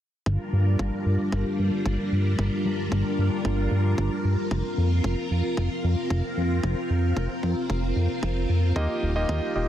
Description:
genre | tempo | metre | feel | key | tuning
italo disco | 113 BPM | 4/4 | straight | G minor | A4 = 439 Hz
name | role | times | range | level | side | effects
string machine, full ensemble | sustained chords | 0.3-9.7 s | G3 to Bb4 | -27 LUFS | equal | ensemble chorus
fat analog bass | bass | 0.3-9.7 s | Eb1 to G2 | -24 LUFS | equal | none
electronic kick drum | drums | 0.3-9.4 s | none | -32 LUFS | equal | high-pass filter on kick
warm electric grand piano | stabs | 8.8-9.7 s | Bb3 to Eb5 | -27 LUFS | equal | digital delay
room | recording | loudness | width
little or no reverb | none | -23 LUFS | side -11 dB against mid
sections
0.3-9.7 A section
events
filter sweep on analog synth bass 0.3-9.7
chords
0.3 Gm7; 4.5 Bbsus2/F; 8.8 Ebadd9

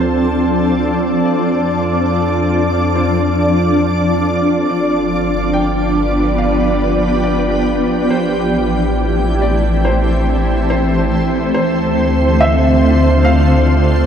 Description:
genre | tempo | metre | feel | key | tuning
ambient | 70 BPM | 4/4 | straight | A minor | A4 = 440 Hz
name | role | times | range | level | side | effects
felt-muted upright piano | melody | 0.0-14.1 s | C5 to G5 | -23 LUFS | left 1 dB | shimmer reverb, ping-pong delay
shimmering ambient pad | sustained chords | 0.0-14.1 s | D3 to D5 | -14 LUFS | equal | chorus, built-in reverb, shimmer reverb
warm sub bass | bass | 0.0-14.1 s | G1 to F2 | -18 LUFS | equal | none
room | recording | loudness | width
wet cathedral reverb, RT60 6.5 s | in a vast, echoing space | -12 LUFS | side -8 dB against mid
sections
0.0-14.1 A section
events
fade-in on sub bass 0.0-14.1; fade-in on felt piano 0.0-14.1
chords
0.0 Dm7; 1.3 F6; 4.7 G7; 8.1 Am7; 11.6 Dm7

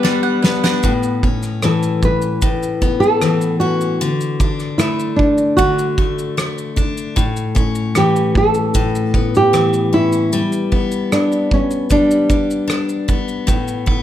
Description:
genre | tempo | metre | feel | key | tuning
acoustic pop | 76 BPM | 4/4 | straight | unclear | A4 = 440 Hz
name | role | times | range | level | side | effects
nylon-string guitar | melody | 0.0-13.1 s | C#4 to B4 | -17 LUFS | right 1 dB | none
picked steel-string acoustic guitar | accompaniment | 0.0-14.0 s | A2 to D4 | -18 LUFS | left 4 dB | none
bowl-back mandolin | arpeggios | 0.0-1.4 s | G3 to F#5 | -23 LUFS | right 8 dB | none
loose indie drum kit | drums | 0.0-14.0 s | kick drum, rim click, shaker, snare drum | -19 LUFS | right 1 dB | none
room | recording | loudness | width
moderate recital hall reverb, RT60 1.4 s | none | -14 LUFS | side -11 dB against mid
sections
0.8-14.0 A section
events
drum fill 0.0-0.8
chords
0.0 Gmaj7; 0.8 Aadd9; 4.0 D; 7.2 Aadd9; 10.3 G; 13.5 Asus2

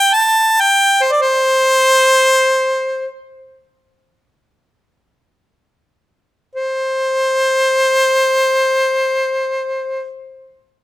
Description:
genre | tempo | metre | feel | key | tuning
chinese traditional | free time | none | none | unclear | A4 = 441 Hz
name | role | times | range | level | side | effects
bright harmonica | solo | 0.0-10.1 s | C5 to A5 | -12 LUFS | equal | none
room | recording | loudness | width
moderate recital hall reverb, RT60 1.4 s | minimal, uncompressed stereo recording | -12 LUFS | side -15 dB against mid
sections
0.0-6.5 A section; 6.5-10.8 B section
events
slowing down 0.0-6.5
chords
none

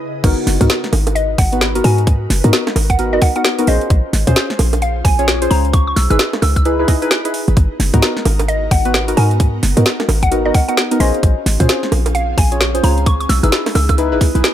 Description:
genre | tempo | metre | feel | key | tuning
UK garage, two-step garage | 131 BPM | 4/4 | swing 61% on 16ths | G# dorian | A4 = 441 Hz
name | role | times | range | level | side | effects
ethereal airy pad | sustained chords | 0.0-14.5 s | C#3 to D#5 | -27 LUFS | equal | ensemble chorus, built-in reverb, sidechain pumping
deep mellow chord stab | stabs | 0.2-14.4 s | B3 to D#5 | -19 LUFS | left 1 dB | chorus, ping-pong delay
short 808-style bass | bass | 0.2-14.4 s | F#1 to A#2 | -16 LUFS | equal | none
electronic kick drum | drums | 0.2-14.3 s | none | -14 LUFS | equal | overdrive
garage drum kit | drums | 0.2-14.5 s | bongos, crash cymbal, hi-hat, snare drum | -18 LUFS | right 1 dB | overdrive
mallet-like synth pluck | melody | 1.2-13.9 s | D#5 to E6 | -21 LUFS | equal | chorus, ping-pong delay
room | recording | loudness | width
little or no reverb | none | -12 LUFS | side -11 dB against mid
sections
0.2-14.5 A section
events
break 0.0; drop 0.2-14.5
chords
0.2 G#m7; 3.7 A#m7; 5.7 C#m7; 7.6 G#m7; 11.0 A#m7; 13.1 C#m7

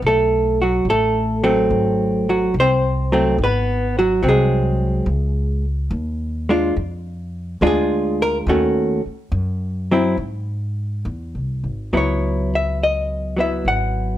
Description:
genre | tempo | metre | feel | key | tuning
jazz ballad | 70 BPM | 4/4 | swing 69% on 8ths | C# minor | A4 = 440 Hz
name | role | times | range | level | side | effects
upright bass | bass | 0.0-14.2 s | G#1 to G#2 | -22 LUFS | equal | none
hollow-body jazz guitar | accompaniment | 0.1-14.2 s | D#3 to F#5 | -17 LUFS | equal | none
room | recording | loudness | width
light reverb | none | -17 LUFS | side -12 dB against mid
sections
0.0-11.9 A section; 11.9-14.2 B section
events
none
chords
0.0 D6 (rootless); 1.7 G#7b9; 5.1 C#sus2; 6.8 Ddim; 8.5 D#m7b5; 10.2 G#aug; 11.9 C#m7

